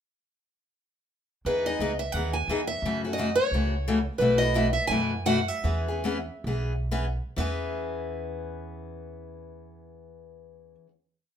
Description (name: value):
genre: acoustic string swing (jazz manouche)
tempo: 122-175 BPM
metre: 4/4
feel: swing 60% on 8ths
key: E major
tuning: A4 = 438 Hz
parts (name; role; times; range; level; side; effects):
- upright bass; bass; 1.4-10.7 s; B1 to F#2; -31 LUFS; right 1 dB; none
- picked steel-string acoustic guitar; melody; 1.5-10.7 s; B4 to G#5; -28 LUFS; right 1 dB; none
- picked steel-string acoustic guitar; accompaniment; 1.5-10.9 s; B2 to G#4; -29 LUFS; left 3 dB; none
room: moderate studio reverb, RT60 0.7 s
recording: minimal, uncompressed stereo recording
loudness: -25 LUFS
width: side -9 dB against mid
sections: 1.5-7.4 A section; 7.4-11.3 final chord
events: slowing down 4.2-7.4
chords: 1.5 Emaj7; 2.8 F#m7; 4.2 B7sus4; 5.6 E6